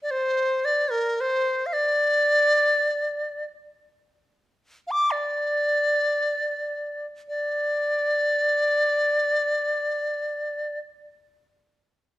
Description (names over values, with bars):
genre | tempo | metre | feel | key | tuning
chinese traditional | free time | none | none | unclear | A4 = 440 Hz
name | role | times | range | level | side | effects
bright reedy large dizi | melody | 0.0-10.8 s | Bb4 to D6 | -21 LUFS | equal | none
room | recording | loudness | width
moderate recital hall reverb, RT60 1.3 s | none | -21 LUFS | side -16 dB against mid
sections
0.0-7.3 A section; 7.3-11.5 B section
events
slowing down 3.1-7.3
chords
none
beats
free time